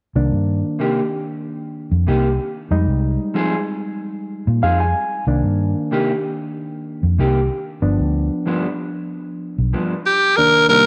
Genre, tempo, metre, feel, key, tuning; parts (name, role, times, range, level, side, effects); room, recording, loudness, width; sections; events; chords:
blues; 94 BPM; 4/4; straight; C minor; A4 = 440 Hz
overdriven reed electric piano; accompaniment; 0.2-10.9 s; C2 to Ab5; -26 LUFS; equal
vintage muted fingered electric bass; bass; 0.2-9.7 s; G1 to Bb2; -20 LUFS; equal
mellow electric guitar; stabs; 0.8-10.9 s; G2 to Ab4; -25 LUFS; equal; spring reverb
growling tenor saxophone; melody; 10.1-10.9 s; G4 to Bb4; -14 LUFS; equal
light reverb, digital ambience; -19 LUFS; mono
0.2-10.4 A section
reed electric piano fill 4.3-5.3
0.2 Cm7; 2.7 Fm7; 5.3 Cm7; 7.8 G7